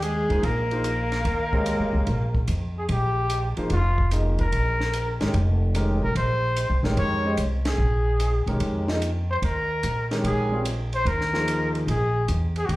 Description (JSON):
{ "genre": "modal jazz", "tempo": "147 BPM", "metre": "4/4", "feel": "swing 67% on 8ths", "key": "Bb dorian", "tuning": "A4 = 440 Hz", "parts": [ { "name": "warm trumpet", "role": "melody", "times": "0.0-12.8 s", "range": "F4 to Db5", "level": "-27 LUFS", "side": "left 1 dB", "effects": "slapback echo" }, { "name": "edgy alto saxophone", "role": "second line", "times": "0.0-2.5 s", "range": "Ab3 to Bb3", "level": "-30 LUFS", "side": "left 1 dB", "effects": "slapback echo" }, { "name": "upright bass", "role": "bass", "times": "0.0-12.8 s", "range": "F1 to Bb2", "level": "-24 LUFS", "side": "equal", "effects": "none" }, { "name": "compact cocktail drum kit", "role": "drums", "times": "0.0-12.8 s", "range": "hi-hat, kick drum, ride cymbal, snare drum", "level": "-33 LUFS", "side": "right 1 dB", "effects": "none" }, { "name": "warm baby grand piano", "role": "accompaniment", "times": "0.3-11.9 s", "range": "Eb3 to Eb5", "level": "-28 LUFS", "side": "equal", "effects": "slapback echo" } ], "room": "small room ambience", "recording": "live gig heard through the venue's PA, club reverb", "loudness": "-21 LUFS", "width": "side -18 dB against mid", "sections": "0.0-2.9 A section; 2.9-12.8 A section", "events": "band accent 7.6", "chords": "0.0 Eb9sus4; 2.9 Bb7sus4; 9.4 Eb9sus4" }